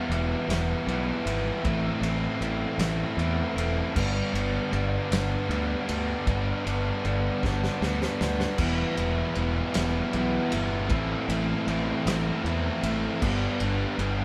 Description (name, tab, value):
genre	quiet-loud alternative rock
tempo	52 BPM (dotted quarters)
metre	6/8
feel	straight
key	A minor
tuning	A4 = 440 Hz
part	biting overdriven guitar	riff	0.0-14.2 s	G2 to G4	-31 LUFS	equal	none
part	fuzz guitar	riff	0.0-14.2 s	E2 to A3	-37 LUFS	equal	distortion
part	growling fingered electric bass	bass	0.1-14.2 s	E1 to E2	-32 LUFS	equal	overdrive
part	loose indie drum kit	drums	0.1-14.2 s	crash cymbal, kick drum, ride cymbal, snare drum	-35 LUFS	equal	none
part	thick fuzz guitar	riff	8.6-14.2 s	A2 to G4	-36 LUFS	equal	none
room	moderate studio reverb, RT60 0.8 s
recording	band playing live in one room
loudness	-27 LUFS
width	mono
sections	0.0-14.2 A section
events	drum fill 7.4-8.6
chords	0.0 Em; 1.6 Am; 4.0 G; 8.6 Em; 10.9 Am; 13.2 G